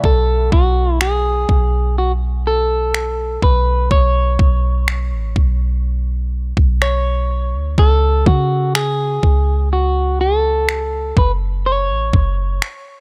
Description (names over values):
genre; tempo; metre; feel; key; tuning
contemporary R&B; 62 BPM; 4/4; straight; unclear; A4 = 440 Hz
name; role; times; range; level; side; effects
clean electric guitar; melody; 0.0-13.0 s; F#4 to C#5; -21 LUFS; equal; none
clean 808-style bass; bass; 0.0-12.6 s; F#1 to C#3; -19 LUFS; equal; none
clean 12-bit digital drum machine; drums; 0.0-12.8 s; finger snaps, kick drum; -18 LUFS; equal; none
room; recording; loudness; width
little or no reverb; dry, gritty hardware recording; -17 LUFS; mono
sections
0.0-13.0 A section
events
break 0.0-13.0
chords
0.0 Bsus2; 7.8 C#5; 11.2 F#m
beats
| 0.04 1.01 1.97 2.94 | 3.91 4.88 5.84 6.81 | 7.78 8.75 9.72 10.68 | 11.65 12.62